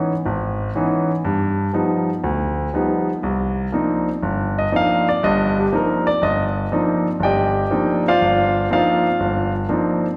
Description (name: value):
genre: jazz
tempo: 121 BPM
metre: 4/4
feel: swing 68% on 8ths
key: C minor from 3.2 s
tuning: A4 = 439 Hz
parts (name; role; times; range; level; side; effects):
- warm concert grand piano; solo; 0.0-10.1 s; G1 to G5; -20 LUFS; equal; none
room: wet scoring stage reverb, RT60 1.9 s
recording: recorded in a church or concert hall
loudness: -19 LUFS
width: mono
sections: 0.0-3.2 A section; 3.2-10.2 B section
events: none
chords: 0.0 C#m9; 1.2 G7b13; 3.2 Cm11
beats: 0.25 0.74 | 1.24 1.74 2.23 2.73 | 3.22 3.72 4.22 4.71 | 5.21 5.71 6.21 6.70 | 7.20 7.70 8.20 8.70 | 9.20 9.70